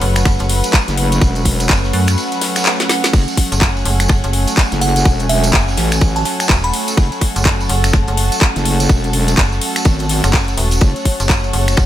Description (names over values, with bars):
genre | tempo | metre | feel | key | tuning
bass house | 125 BPM | 4/4 | swing 61% on 16ths | F# minor | A4 = 438 Hz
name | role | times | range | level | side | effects
warm studio string section | sustained chords | 0.0-11.9 s | F#3 to C#5 | -24 LUFS | left 1 dB | sidechain pumping, low-pass filter
metallic FM bass | bass | 0.0-11.9 s | E1 to F#2 | -17 LUFS | equal | overdrive, sidechain pumping
garage drum kit | drums | 0.0-11.9 s | crash cymbal, finger snaps, handclaps, hi-hat, snare drum | -19 LUFS | left 1 dB | none
warm soul drum kit | drums | 0.0-11.9 s | ride cymbal, snare drum | -28 LUFS | left 3 dB | sidechain pumping on cymbals, high-pass filter on cymbals, high-pass filter on snare, high-pass filter on room
airy breathy pad | texture | 0.0-11.9 s | A3 to A5 | -23 LUFS | right 1 dB | chorus, sidechain pumping
tambourine | percussion | 0.2-11.9 s | none | -26 LUFS | right 3 dB | none
electronic kick drum | drums | 0.3-11.9 s | none | -12 LUFS | equal | none
wobble bass | bass | 0.9-10.9 s | E1 to A1 | -17 LUFS | equal | chorus, overdrive, sidechain pumping
glassy synth bell | melody | 4.8-7.1 s | E5 to B5 | -22 LUFS | right 3 dB | chorus, ping-pong delay
room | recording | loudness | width
light reverb | none | -12 LUFS | side -12 dB against mid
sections
0.0-11.9 A section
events
drum fill 2.8-3.1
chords
0.0 F#madd9